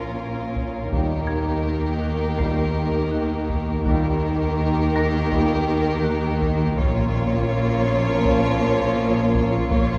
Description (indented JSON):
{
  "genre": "cinematic, suspense film score",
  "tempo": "82 BPM",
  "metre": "4/4",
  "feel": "straight",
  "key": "unclear",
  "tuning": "A4 = 439 Hz",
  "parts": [
    { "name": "rich studio violin section", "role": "melody", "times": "0.0-10.0 s", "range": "Bb4 to Db5", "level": "-33 LUFS", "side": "equal", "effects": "none" },
    { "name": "rich chamber violin section", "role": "second line", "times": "0.0-10.0 s", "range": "F4 to G4", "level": "-33 LUFS", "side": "equal", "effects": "none" },
    { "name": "rich chamber viola section", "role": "accompaniment", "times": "0.0-10.0 s", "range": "Bb3 to Db4", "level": "-32 LUFS", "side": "equal", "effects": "none" },
    { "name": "glass harmonica", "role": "sustained chords", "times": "0.0-10.0 s", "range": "G4 to Bb5", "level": "-36 LUFS", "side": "equal", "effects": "none" },
    { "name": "marimba with medium mallets", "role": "riff", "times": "0.0-9.9 s", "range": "Bb2 to Eb4", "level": "-30 LUFS", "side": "equal", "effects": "none" },
    { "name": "clear chamber cello section", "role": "bass", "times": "0.0-10.0 s", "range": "Bb2 to Eb3", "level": "-29 LUFS", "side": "equal", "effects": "none" },
    { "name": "rich chamber double bass section", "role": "bass", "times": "0.0-10.0 s", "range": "Bb1 to Eb2", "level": "-29 LUFS", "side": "equal", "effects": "none" },
    { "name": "solo taiko drums", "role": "drums", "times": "0.6-10.0 s", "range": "none", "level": "-30 LUFS", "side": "equal", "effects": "none" },
    { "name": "clear trombone section", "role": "sustained chords", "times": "0.9-10.0 s", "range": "Bb2 to G3", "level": "-34 LUFS", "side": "equal", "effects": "none" },
    { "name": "mellow French horn section", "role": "sustained chords", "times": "0.9-10.0 s", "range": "Bb3 to Eb4", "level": "-32 LUFS", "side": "equal", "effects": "none" },
    { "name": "music box", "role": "texture", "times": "1.3-10.0 s", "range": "Bb5 to C7", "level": "-39 LUFS", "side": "equal", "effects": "none" }
  ],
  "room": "wet concert hall reverb, RT60 2.4 s",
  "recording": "heard from further back in the room",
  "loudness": "-22 LUFS",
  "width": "mono",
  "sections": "0.0-10.0 A section",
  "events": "none",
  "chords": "0.0 Bbm; 0.9 Eb; 6.8 Bbm"
}